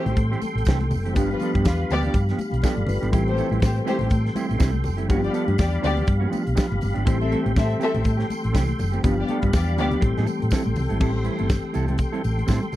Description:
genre	disco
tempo	122 BPM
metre	4/4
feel	swing 56% on 16ths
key	A minor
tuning	A4 = 440 Hz
part	dark studio string section	second line	0.0-10.0 s	G3 to E5	-27 LUFS	left 3 dB	none
part	bright reed electric piano	accompaniment	0.0-12.8 s	E3 to D5	-29 LUFS	left 4 dB	overdrive
part	mellow electric guitar	accompaniment	0.0-12.8 s	E3 to B4	-28 LUFS	right 6 dB	none
part	tonewheel organ	sustained chords	0.0-12.8 s	G4 to C6	-32 LUFS	equal	chorus vibrato, slow rotary speaker
part	hollow-body short-scale fingered electric bass	bass	0.1-12.6 s	F#1 to A2	-24 LUFS	equal	none
part	modern studio drum kit	drums	0.1-12.8 s	crash cymbal, hi-hat, kick drum, snare drum	-22 LUFS	equal	none
part	congas	percussion	0.1-12.8 s	none	-32 LUFS	left 2 dB	none
part	tambourine	percussion	0.4-12.8 s	none	-46 LUFS	right 15 dB	none
room	little or no reverb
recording	dry, close 1970s-style studio recording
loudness	-20 LUFS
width	side -14 dB against mid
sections	0.0-11.0 A section; 11.0-12.8 B section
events	none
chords	0.0 Am7; 1.2 G7; 3.1 Am7; 5.1 G7; 7.1 Am7; 9.0 G7; 10.0 Am7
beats	0.17 0.66 | 1.15 1.65 2.14 2.63 | 3.13 3.62 4.11 4.61 | 5.10 5.59 6.08 6.58 | 7.07 7.56 8.05 8.54 | 9.04 9.53 10.02 10.52 | 11.01 11.50 11.99 12.49

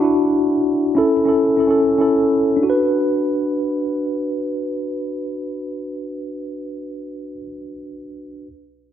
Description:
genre	hip hop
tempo	free time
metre	none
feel	none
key	B minor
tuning	A4 = 440 Hz
part	concert harp	melody	0.0-0.9 s	A4 to D5	-48 LUFS	equal	none
part	mellow tine electric piano	accompaniment	0.0-8.5 s	C#4 to B4	-18 LUFS	equal	medium stereo tremolo
room	moderate lush hall reverb, RT60 2.0 s, digital ambience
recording	dense, heavily limited modern master, faint mains hum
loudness	-16 LUFS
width	side -10 dB against mid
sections	0.0-2.6 A section; 2.6-6.0 B section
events	none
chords	0.0 Dadd9; 1.0 A; 2.6 Bm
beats	free time

